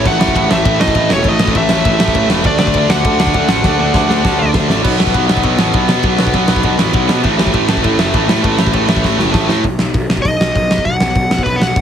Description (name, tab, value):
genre	punk rock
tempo	200 BPM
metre	4/4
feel	straight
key	unclear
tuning	A4 = 440 Hz
part	smooth overdriven lead guitar	melody	0.0-4.5, 10.2-11.8 s	B4 to F#5	-17 LUFS	equal	none
part	distorted electric guitar	riff	0.0-9.6 s	A2 to D4	-15 LUFS	right 1 dB	overdrive
part	fuzz picked electric bass	bass	0.0-11.8 s	E1 to B2	-18 LUFS	equal	overdrive
part	big rock drum kit	drums	0.1-11.8 s	crash cymbal, hi-hat, kick drum, ride cymbal, snare drum	-16 LUFS	equal	none
room	little or no reverb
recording	heavily compressed radio sound, multiband compression, faint mains hum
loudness	-11 LUFS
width	side -9 dB against mid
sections	0.0-4.8 A section; 4.8-9.6 B section; 9.6-11.8 C section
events	drum fill 3.6-4.8, 9.0-9.6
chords	0.0 A5; 2.4 D; 4.8 B5; 7.2 A5; 9.6 B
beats	| 0.05 0.35 0.65 0.95 | 1.25 1.55 1.85 2.15 | 2.44 2.74 3.04 3.34 | 3.64 3.94 4.24 4.54 | 4.84 5.14 5.44 5.74 | 6.04 6.34 6.64 6.94 | 7.24 7.54 7.84 8.14 | 8.44 8.74 9.04 9.34 | 9.64 9.94 10.24 10.54 | 10.85 11.15 11.45 11.76